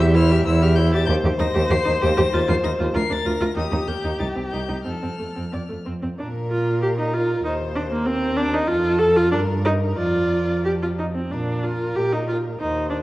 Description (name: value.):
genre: quick classical-period movement for string quartet.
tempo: 90-98 BPM.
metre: 2/4.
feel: rubato.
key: Bb major.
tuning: A4 = 440 Hz.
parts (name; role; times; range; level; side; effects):
rich violin; melody; 0.0-13.0 s; A4 to C7; -33 LUFS; left 6 dB; none.
rich violin; second line; 0.0-13.0 s; G4 to E5; -28 LUFS; left 3 dB; none.
rich viola; accompaniment; 0.0-13.0 s; A3 to A4; -22 LUFS; equal; none.
clear cello; bass; 0.0-13.0 s; C2 to Bb2; -22 LUFS; right 1 dB; none.
room: wet recital hall reverb, RT60 1.5 s.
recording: worn, warbling old tape, cassette tape, warbly pitch drift.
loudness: -19 LUFS.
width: side -17 dB against mid.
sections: 0.0-6.2 A section; 6.2-13.0 B section.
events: none.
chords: 0.0 C/E; 1.1 Cm/Eb; 2.3 F5/Eb; 2.9 Bb/D; 3.6 Eb; 4.2 Cm; 4.9 F; 6.2 Bbsus4; 7.4 Cm/Eb; 8.7 F; 9.3 Gm; 10.0 Bb/F; 10.6 F; 11.3 Bb.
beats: 0.46 | 1.08 1.70 | 2.32 2.94 | 3.56 4.19 | 4.85 5.52 | 6.18 6.82 | 7.44 8.06 | 8.68 9.32 | 9.97 10.64 | 11.31 11.96 | 12.59.